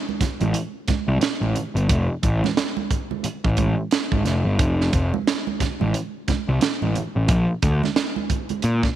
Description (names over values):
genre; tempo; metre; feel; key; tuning
funk; 89 BPM; 4/4; swing 60% on 16ths; F major; A4 = 439 Hz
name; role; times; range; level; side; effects
congas; percussion; 0.1-8.8 s; none; -29 LUFS; right 10 dB; none
fuzz picked electric bass; bass; 0.2-8.8 s; F1 to Bb2; -20 LUFS; left 1 dB; overdrive
tight funk drum kit; drums; 0.2-9.0 s; hi-hat, kick drum, snare drum; -23 LUFS; right 2 dB; none
room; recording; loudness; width
light reverb, studio ambience; 1960s-style stereo; -20 LUFS; side -12 dB against mid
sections
0.0-9.0 A section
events
none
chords
none